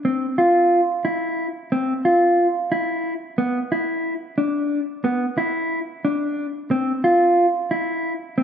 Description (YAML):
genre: progressive instrumental, progressive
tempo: 180 BPM (eighths)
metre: 5/8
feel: straight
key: unclear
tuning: A4 = 440 Hz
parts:
  - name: mellow electric guitar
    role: solo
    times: 0.0-8.4 s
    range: B3 to F4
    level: -18 LUFS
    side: equal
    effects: spring reverb
room: wet studio ambience, RT60 0.5 s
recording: none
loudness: -18 LUFS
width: side -8 dB against mid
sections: 0.1-8.4 A section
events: none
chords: none